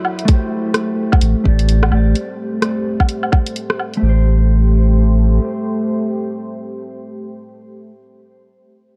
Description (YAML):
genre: future garage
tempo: 128 BPM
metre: 4/4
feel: swing 61% on 16ths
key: A minor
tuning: A4 = 438 Hz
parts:
  - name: deep dark ambient pad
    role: sustained chords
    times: 0.0-8.0 s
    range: F#3 to E5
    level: -28 LUFS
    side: equal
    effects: chorus, built-in reverb, sidechain pumping
  - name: garage drum kit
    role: drums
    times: 0.0-4.0 s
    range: hi-hat, rim click, woodblock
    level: -24 LUFS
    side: equal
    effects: none
  - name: mellow electric guitar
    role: accompaniment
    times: 0.3-8.0 s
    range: A3 to D5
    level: -24 LUFS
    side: equal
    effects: sidechain pumping, tape echo
  - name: electronic kick drum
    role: drums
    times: 0.3-3.4 s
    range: none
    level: -15 LUFS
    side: equal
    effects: none
  - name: warm sub bass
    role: bass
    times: 1.2-5.4 s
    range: A1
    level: -14 LUFS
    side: equal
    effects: sidechain pumping
room: light reverb, digital ambience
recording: cassette tape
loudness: -16 LUFS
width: mono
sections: 0.3-4.0 A section; 4.0-7.8 B section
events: break 0.0; band accent 0.0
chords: 0.3 Am7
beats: | 0.28 0.75 1.22 1.69 | 2.16 2.62 3.09 3.56 | 4.03 4.50 4.97 5.44 | 5.91 6.38 6.84 7.31